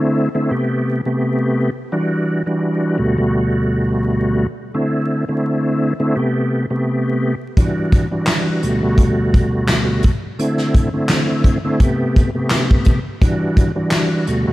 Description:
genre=hip hop, boom-bap hip-hop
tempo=85 BPM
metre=4/4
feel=swing 55% on 16ths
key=E minor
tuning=A4 = 439 Hz
part: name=bright tonewheel organ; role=accompaniment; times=0.0-14.5 s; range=D2 to G4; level=-17 LUFS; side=equal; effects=overdrive, chorus vibrato, slow rotary speaker, cassette tape, high-pass filter, low-pass filter
part: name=soft brush drum kit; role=drums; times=7.6-14.5 s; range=handclaps, hi-hat, kick drum, snare drum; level=-16 LUFS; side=equal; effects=none
room=light reverb, small room ambience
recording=vinyl crackle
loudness=-15 LUFS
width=side -17 dB against mid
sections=0.0-14.5 A section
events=none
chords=0.0 C69; 0.5 Am9; 1.9 Em9; 3.0 Gmaj9/D; 4.7 C69; 6.2 Am9; 7.6 Em9; 8.6 Gmaj9/D; 10.4 C69; 11.8 Am9; 13.2 Em9

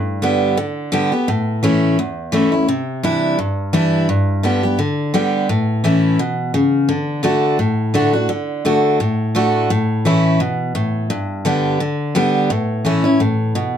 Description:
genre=bluegrass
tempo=171 BPM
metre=4/4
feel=swing 55% on 8ths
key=D major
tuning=A4 = 440 Hz
part: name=picked steel-string acoustic guitar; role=solo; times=0.0-13.8 s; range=E2 to G4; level=-15 LUFS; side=equal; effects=none
room=moderate studio ambience, RT60 0.5 s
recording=dark, warm production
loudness=-15 LUFS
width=side -9 dB against mid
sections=0.0-8.3 A section; 8.3-13.8 A section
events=none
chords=0.0 G; 1.3 A; 2.7 Cadd9; 4.1 G; 5.5 A; 6.9 D; 9.7 A; 11.1 G; 12.5 A

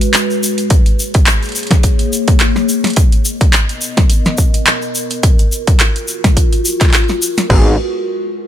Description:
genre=glitch hop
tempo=106 BPM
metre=4/4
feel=swing 56% on 16ths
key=G# dorian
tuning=A4 = 439 Hz
part: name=warbly tape-like pad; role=sustained chords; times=0.0-7.8 s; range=G#3 to D#5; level=-19 LUFS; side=left 2 dB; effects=chorus, built-in reverb, sidechain pumping
part: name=dubstep drum kit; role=drums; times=0.0-7.6 s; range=crash cymbal, handclaps, hi-hat, snare drum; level=-16 LUFS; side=equal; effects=none
part: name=egg shaker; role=percussion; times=0.0-7.5 s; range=none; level=-21 LUFS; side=left 2 dB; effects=none
part: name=electronic kick drum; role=drums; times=0.7-7.6 s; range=none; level=-11 LUFS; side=equal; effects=none
part: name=mellow electric guitar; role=stabs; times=7.5-7.7 s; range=B3 to G#4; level=-21 LUFS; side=equal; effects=sidechain pumping, dub echo
part: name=gritty driven synth bass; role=bass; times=7.5-7.8 s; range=G#1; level=-14 LUFS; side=equal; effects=tube saturation
room=little or no reverb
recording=none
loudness=-10 LUFS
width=side -11 dB against mid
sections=0.0-7.5 A section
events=none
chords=0.0 G#m7; 0.7 A#m7; 3.0 Bmaj7; 5.2 F#maj7; 7.5 G#m7

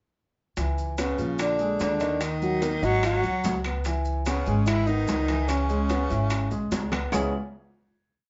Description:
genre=Afro-Cuban jazz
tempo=146 BPM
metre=4/4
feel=straight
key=C# minor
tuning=A4 = 440 Hz
part: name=warm baby grand piano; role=accompaniment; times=0.6-7.3 s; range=C#3 to E5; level=-32 LUFS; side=equal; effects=none
part: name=upright bass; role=bass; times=0.6-7.3 s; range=G#1 to D#2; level=-31 LUFS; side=equal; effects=none
part: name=bongos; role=percussion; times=0.6-7.2 s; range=none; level=-38 LUFS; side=equal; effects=none
part: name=maracas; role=percussion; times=0.6-7.2 s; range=none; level=-45 LUFS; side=equal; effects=none
part: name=timbales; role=percussion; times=0.6-7.2 s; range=none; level=-37 LUFS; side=equal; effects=none
part: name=breathy tenor saxophone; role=melody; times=1.0-6.7 s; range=C#4 to F#4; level=-30 LUFS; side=equal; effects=none
part: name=growling baritone saxophone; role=second line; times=1.0-6.7 s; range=C#3 to F#3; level=-35 LUFS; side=equal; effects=none
part: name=claves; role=percussion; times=1.0-7.2 s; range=none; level=-42 LUFS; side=equal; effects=none
room=wet studio reverb, RT60 0.6 s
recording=band playing live in one room, nothing above 7.6 kHz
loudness=-26 LUFS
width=mono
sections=0.6-7.1 A section; 7.1-8.3 final chord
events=drum fill 6.7-7.1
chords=0.6 C#m7; 1.4 A#7; 2.2 D#m; 3.0 G#7; 3.9 C#m7

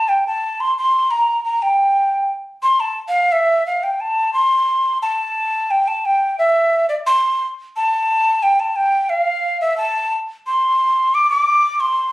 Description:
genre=andean folk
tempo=88 BPM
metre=2/4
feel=straight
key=A minor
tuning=A4 = 443 Hz
part: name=mellow quena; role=solo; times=0.0-12.1 s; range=D5 to D6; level=-15 LUFS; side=equal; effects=none
room=moderate studio reverb, RT60 0.6 s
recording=recorded on a phone in the room, club reverb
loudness=-15 LUFS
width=side -17 dB against mid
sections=0.0-5.4 A section; 5.4-12.1 B section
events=none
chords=none

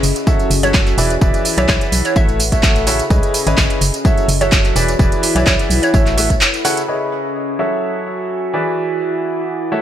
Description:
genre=piano house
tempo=127 BPM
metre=4/4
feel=swing 53% on 16ths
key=unclear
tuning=A4 = 440 Hz
part: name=organ-like FM bass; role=bass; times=0.0-6.4 s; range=E1 to C#2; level=-18 LUFS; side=equal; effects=sidechain pumping
part: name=house drum kit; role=drums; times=0.0-6.9 s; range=handclaps, hi-hat, tambourine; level=-18 LUFS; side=right 2 dB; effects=low-pass filter on snare, studio reverb, low-pass filter on perc, low-pass filter on hats
part: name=warbly tape-like pad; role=texture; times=0.0-9.8 s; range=C#4 to D#6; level=-22 LUFS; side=left 1 dB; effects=chorus, built-in reverb, sidechain pumping
part: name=bright grand piano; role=riff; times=0.3-9.8 s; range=C#3 to F#5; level=-19 LUFS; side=equal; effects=sidechain pumping, low-pass filter, digital delay
part: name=electronic kick drum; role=drums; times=0.3-6.4 s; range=none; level=-15 LUFS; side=equal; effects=studio reverb
part: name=hollow square pluck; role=melody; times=0.6-6.0 s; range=C#5 to E5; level=-23 LUFS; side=right 2 dB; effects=chorus, cassette tape, digital delay
room=light reverb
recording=none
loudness=-13 LUFS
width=side -10 dB against mid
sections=0.0-6.9 A section; 6.9-9.8 B section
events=filter sweep on grand piano 6.9-9.8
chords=0.0 F#m7; 1.0 E7; 2.2 A6; 3.1 C#m9; 3.8 F#m7; 4.8 E7; 5.9 A6; 6.9 C#m9; 7.6 F#m7; 8.5 E7

